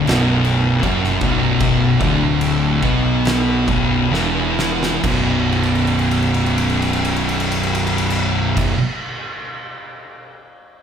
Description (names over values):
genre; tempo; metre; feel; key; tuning
stoner and doom metal; 64-80 BPM; 4/4; straight; B minor; A4 = 440 Hz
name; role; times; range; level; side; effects
thick fuzz guitar; riff; 0.0-8.8 s; B1 to B3; -19 LUFS; left 5 dB; distortion
thick fuzz guitar; riff; 0.0-8.8 s; B1 to B3; -20 LUFS; right 10 dB; distortion
fuzz fingered electric bass; bass; 0.0-8.7 s; B0 to B1; -23 LUFS; right 1 dB; overdrive
oversized low-tuned drum kit; drums; 0.1-10.3 s; crash cymbal, kick drum, ride cymbal, snare drum; -23 LUFS; equal; none
room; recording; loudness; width
moderate large studio reverb, RT60 0.9 s; band playing live in one room; -15 LUFS; side -8 dB against mid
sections
0.0-5.0 A section; 5.0-8.8 B section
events
slowing down 0.0-5.0; drum fill 4.1-5.0, 5.5-8.6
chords
0.0 Bm; 5.0 B5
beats
0.07 0.83 | 1.61 2.42 3.25 4.13 | 5.04 5.98 6.92 7.87